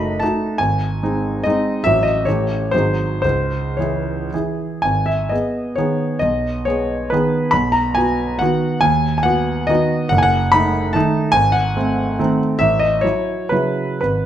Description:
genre	classical, romantic triple-time dance for piano with dotted rhythms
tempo	105-157 BPM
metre	3/4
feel	rubato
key	C# minor, G# minor from 4.9 s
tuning	A4 = 436 Hz
part	warm concert grand piano	solo	0.0-14.3 s	F#1 to B5	-16 LUFS	equal	none
room	light reverb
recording	close, detailed microphones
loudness	-16 LUFS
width	side -10 dB against mid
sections	0.0-4.9 A section; 4.9-14.3 B section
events	none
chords	0.0 D#dim/F#; 0.6 G#; 1.9 F#m/A; 2.3 A7; 2.7 G#7; 3.2 C#m; 4.9 G#m; 6.2 G#m/B; 7.5 B; 8.8 B/D#; 10.1 D#dim/F#; 11.4 G#7b9; 12.6 A6

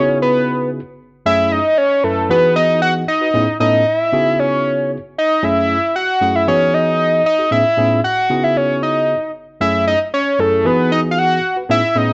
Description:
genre	funk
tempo	115 BPM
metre	4/4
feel	straight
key	F# dorian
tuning	A4 = 444 Hz
part	fat analog lead	melody	0.0-12.1 s	A4 to F#5	-17 LUFS	equal	slapback echo
part	tine electric piano	accompaniment	0.0-12.1 s	F#2 to B4	-22 LUFS	equal	none
room	light reverb, digital ambience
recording	nothing above 8.0 kHz, faint mains hum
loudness	-16 LUFS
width	mono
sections	0.0-12.1 A section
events	none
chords	0.0 C#m11; 1.3 F#m9; 2.3 Emaj9; 3.3 Amaj9#11; 4.1 C#m11; 5.4 F#m9; 6.5 Emaj9; 7.5 Amaj9#11; 8.3 C#m11; 9.6 F#m9; 10.7 Emaj9

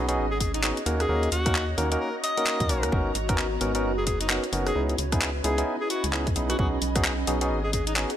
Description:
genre	UK garage, two-step garage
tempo	131 BPM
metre	4/4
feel	swing 61% on 16ths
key	G# minor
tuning	A4 = 442 Hz
part	soft string machine	sustained chords	0.0-8.2 s	E4 to A#5	-39 LUFS	equal	phaser, ensemble chorus, sidechain pumping
part	barky tine electric piano	stabs	0.0-8.1 s	A#3 to A#4	-29 LUFS	equal	ping-pong delay
part	rubbery square bass	bass	0.0-8.1 s	F#1 to F#2	-29 LUFS	equal	none
part	warbly tape-like pad	texture	0.0-8.2 s	B3 to B5	-33 LUFS	right 1 dB	chorus, built-in reverb, sidechain pumping
part	garage drum kit	drums	0.1-8.2 s	handclaps, hi-hat, rim click	-28 LUFS	left 1 dB	none
part	bright alto saxophone	melody	0.3-8.1 s	D#4 to D#5	-31 LUFS	left 1 dB	ping-pong delay
part	electronic kick drum	drums	0.4-7.8 s	none	-27 LUFS	equal	none
room	light reverb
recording	none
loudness	-23 LUFS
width	side -10 dB against mid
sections	0.0-8.2 A section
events	none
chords	0.0 B69; 0.9 D#m7; 2.9 G#m11; 4.8 C#m9; 6.6 B69

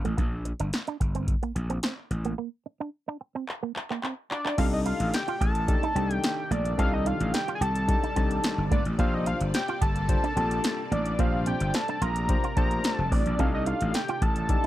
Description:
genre	early-eighties boogie funk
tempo	109 BPM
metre	4/4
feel	straight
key	C dorian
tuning	A4 = 440 Hz
part	electric guitar with an envelope filter	riff	0.0-14.7 s	A3 to G4	-33 LUFS	right 6 dB	analog chorus
part	gritty slap bass	bass	0.0-14.6 s	F1 to C2	-28 LUFS	equal	overdrive
part	electro analog drum machine	drums	0.1-14.7 s	crash cymbal, handclaps, hi-hat, kick drum, snare drum	-28 LUFS	equal	overdrive
part	fat analog lead	melody	4.3-14.7 s	D5 to Bb5	-30 LUFS	equal	chorus
part	barky tine electric piano	accompaniment	4.6-14.7 s	D4 to C5	-33 LUFS	left 4 dB	none
part	lush unison pad	sustained chords	4.6-14.7 s	C3 to D5	-38 LUFS	equal	chorus, phaser
room	little or no reverb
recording	dry, close 1970s-style studio recording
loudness	-24 LUFS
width	side -14 dB against mid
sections	0.0-4.6 A section; 4.6-14.7 B section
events	break 2.4-4.6; drum fill 3.5-4.6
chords	0.2 Bb69; 4.6 Cm69; 9.0 Bb69; 13.4 Cm69

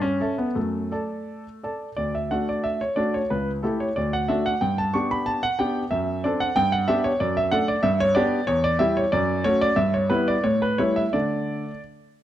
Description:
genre	classical-period piano sonatina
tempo	83-95 BPM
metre	2/4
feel	rubato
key	D major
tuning	A4 = 440 Hz
part	clear grand piano	solo	0.0-11.8 s	C#2 to C#6	-21 LUFS	equal	none
room	light reverb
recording	close, detailed microphones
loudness	-21 LUFS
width	side -12 dB against mid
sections	0.0-2.0 A section; 2.0-12.2 A section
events	none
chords	0.0 A7/G; 0.6 D/F#; 2.0 D; 3.3 A7/C#; 4.0 D; 4.6 G; 5.9 D7/F#; 6.6 G; 7.2 D/F#; 7.8 G; 8.5 Em6; 9.1 F#m; 9.8 Em/G; 10.4 A5; 11.1 D5

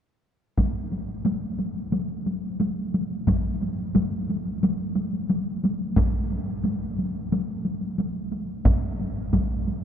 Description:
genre	japanese traditional, taiko drum ensemble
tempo	89 BPM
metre	4/4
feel	straight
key	none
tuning	none
part	taiko ensemble	percussion	0.6-9.8 s	none	-26 LUFS	equal	none
part	taiko ensemble	percussion	0.6-9.5 s	none	-26 LUFS	equal	none
room	wet cathedral reverb, RT60 7.0 s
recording	recorded in a church or concert hall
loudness	-24 LUFS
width	side -9 dB against mid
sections	0.6-9.8 A section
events	none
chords	none

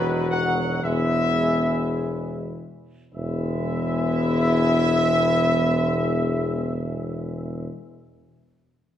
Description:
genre	classical, ceremonial fanfare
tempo	free time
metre	none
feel	none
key	E major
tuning	A4 = 440 Hz
part	mellow trumpet section	melody	0.0-7.7 s	B4 to F#5	-25 LUFS	equal	none
part	dark French horn section	sustained chords	0.0-7.7 s	B3 to F#4	-27 LUFS	left 4 dB	none
part	warm trombone section	sustained chords	0.0-7.7 s	D#3 to G#3	-33 LUFS	equal	none
part	warm tuba	bass	0.0-7.7 s	E1	-25 LUFS	right 1 dB	none
room	wet recital hall reverb, RT60 1.6 s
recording	none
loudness	-20 LUFS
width	side -10 dB against mid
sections	0.0-3.1 A section; 3.1-7.7 B section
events	slowing down 0.0-3.1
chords	0.0 B/E; 0.8 E

